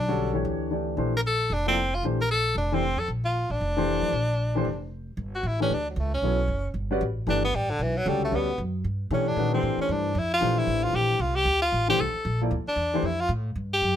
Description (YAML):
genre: modal jazz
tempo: 229 BPM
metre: 4/4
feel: swing 59% on 8ths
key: unclear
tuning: A4 = 441 Hz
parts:
  - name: breathy tenor saxophone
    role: melody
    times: 0.0-14.0 s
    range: D3 to Bb4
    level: -26 LUFS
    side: equal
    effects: none
  - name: upright bass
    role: bass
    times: 0.0-14.0 s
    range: F1 to B2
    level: -28 LUFS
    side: equal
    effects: none
  - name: warm grand piano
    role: accompaniment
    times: 0.1-13.0 s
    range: D3 to D5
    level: -28 LUFS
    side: left 2 dB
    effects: none
room: light reverb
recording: close, detailed microphones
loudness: -23 LUFS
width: side -10 dB against mid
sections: 0.0-5.2 A section; 5.2-14.0 B section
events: tenor saxophone solo 5.2-14.0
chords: 0.0 Gmaj9; 1.0 Bbmaj9; 5.2 Gmaj9; 9.4 Bbmaj9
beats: 0.20 0.46 0.72 | 0.98 1.25 1.51 1.77 | 2.03 2.29 2.56 2.82 | 3.08 3.34 3.61 3.87 | 4.13 4.39 4.66 4.92 | 5.18 5.44 5.70 5.97 | 6.23 6.49 6.75 7.01 | 7.28 7.54 7.80 8.06 | 8.32 8.59 8.85 9.11 | 9.37 9.63 9.89 10.15 | 10.42 10.68 10.94 11.20 | 11.46 11.72 11.99 12.25 | 12.51 12.77 13.03 13.29 | 13.55 13.82